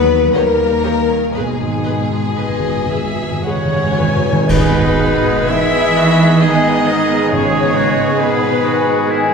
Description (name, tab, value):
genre	classical, slow romantic movement for symphony orchestra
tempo	52-70 BPM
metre	3/4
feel	rubato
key	G# minor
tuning	A4 = 440 Hz
part	rich chamber violin section	second line	0.0-9.1 s	B3 to B4	-23 LUFS	left 3 dB	none
part	mellow French horn section	sustained chords	0.0-9.3 s	G#3 to B3	-21 LUFS	left 4 dB	none
part	concert harp	arpeggios	0.0-9.3 s	G#2 to B5	-22 LUFS	left 4 dB	none
part	dark chamber double bass section	bass	0.0-8.1 s	G#1 to D#2	-24 LUFS	right 2 dB	none
part	rich symphonic cello section	bass	0.0-9.1 s	B2 to G3	-21 LUFS	right 2 dB	none
part	rich chamber violin section	melody	0.3-9.1 s	B4 to G#5	-22 LUFS	left 2 dB	none
part	warm studio viola section	accompaniment	0.3-9.3 s	D#3 to C#5	-24 LUFS	right 1 dB	none
part	timpani	percussion	1.4-8.6 s	G#2	-20 LUFS	right 2 dB	none
part	silver concert flute	second line	3.5-9.1 s	B4 to E5	-22 LUFS	left 1 dB	none
part	bright clarinet	second line	4.5-9.3 s	G#4	-28 LUFS	left 4 dB	none
part	clear oboe	second line	4.5-9.3 s	D#4 to A#4	-23 LUFS	left 1 dB	none
part	mellow bassoon	accompaniment	4.5-9.3 s	G#3	-22 LUFS	right 4 dB	none
part	bright trombone section	sustained chords	4.5-9.3 s	G#2 to D#3	-24 LUFS	right 2 dB	none
part	bright trumpet	stabs	4.5-9.3 s	G#4	-22 LUFS	right 4 dB	none
part	clash cymbals and concert bass drum	percussion	4.5-6.4 s	none	-22 LUFS	right 1 dB	none
room	wet concert hall reverb, RT60 1.7 s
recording	heard from further back in the room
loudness	-12 LUFS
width	side -5 dB against mid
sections	0.0-4.5 A section; 4.5-9.3 B section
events	timpani fill 1.3-4.5; band accent 4.5-5.5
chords	0.4 D#7; 1.3 G#m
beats	0.35 | 1.35 2.35 3.45 | 4.47 5.48 6.42 | 7.33 8.22 9.10